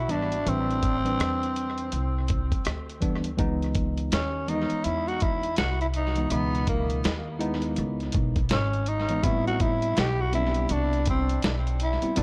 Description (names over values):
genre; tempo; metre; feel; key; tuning
hip hop, jazz-hop; 82 BPM; 4/4; swing 62% on 16ths; unclear; A4 = 440 Hz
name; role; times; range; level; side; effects
growling tenor saxophone; melody; 0.0-12.2 s; A#3 to G4; -31 LUFS; equal; tape echo
upright bass; bass; 0.0-12.2 s; G#1 to E2; -32 LUFS; equal; none
tine electric piano; accompaniment; 0.1-12.2 s; B2 to B4; -32 LUFS; equal; none
dusty soul sampler-style drum kit; drums; 0.1-12.2 s; hi-hat, kick drum, rim click, snare drum; -32 LUFS; equal; overdrive, tape echo
room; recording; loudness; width
small room ambience; echo-heavy mix; -26 LUFS; mono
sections
0.0-3.4 A section; 3.4-12.2 B section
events
tenor saxophone solo 3.4-12.2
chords
0.0 Am9; 3.4 C#m9; 9.2 Am9